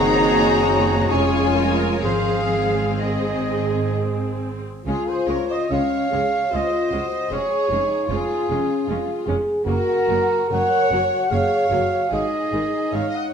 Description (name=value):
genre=classical, slow romantic movement for symphony orchestra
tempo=62-79 BPM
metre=3/4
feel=rubato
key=Db major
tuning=A4 = 440 Hz
part: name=rich studio violin section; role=melody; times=0.0-13.0 s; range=Db4 to Bb5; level=-28 LUFS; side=left 6 dB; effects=none
part: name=rich studio violin section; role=second line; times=0.0-13.3 s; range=F4 to Eb5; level=-28 LUFS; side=left 2 dB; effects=none
part: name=silver concert flute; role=second line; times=0.0-4.0 s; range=Eb5 to Bb5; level=-28 LUFS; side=left 2 dB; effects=none
part: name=rich studio viola section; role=accompaniment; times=0.0-13.0 s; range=Eb3 to Bb4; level=-28 LUFS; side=right 1 dB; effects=none
part: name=warm French horn section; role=sustained chords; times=0.0-13.3 s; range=Eb3 to Bb4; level=-25 LUFS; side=left 4 dB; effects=none
part: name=dark trumpet section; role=stabs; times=0.0-13.3 s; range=Ab4 to Gb5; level=-23 LUFS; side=right 3 dB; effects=none
part: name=clear studio double bass section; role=bass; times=0.0-13.0 s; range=F1 to Db2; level=-27 LUFS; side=right 3 dB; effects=none
part: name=rich chamber cello section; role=bass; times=0.0-13.0 s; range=F2 to Bb3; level=-31 LUFS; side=right 2 dB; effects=none
part: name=mellow cor anglais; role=second line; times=1.1-2.4 s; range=C5 to Db5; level=-31 LUFS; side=right 5 dB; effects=none
part: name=warm clarinet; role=second line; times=1.1-2.4 s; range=Ab4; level=-32 LUFS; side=left 6 dB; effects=none
room=wet recital hall reverb, RT60 1.3 s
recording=none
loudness=-18 LUFS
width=side -7 dB against mid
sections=0.0-4.9 A section; 4.9-13.3 B section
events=none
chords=0.0 Ab7/Gb; 1.1 Db/F; 2.0 Ab; 4.9 Db; 7.3 Db/F; 9.7 Gb; 12.1 Absus4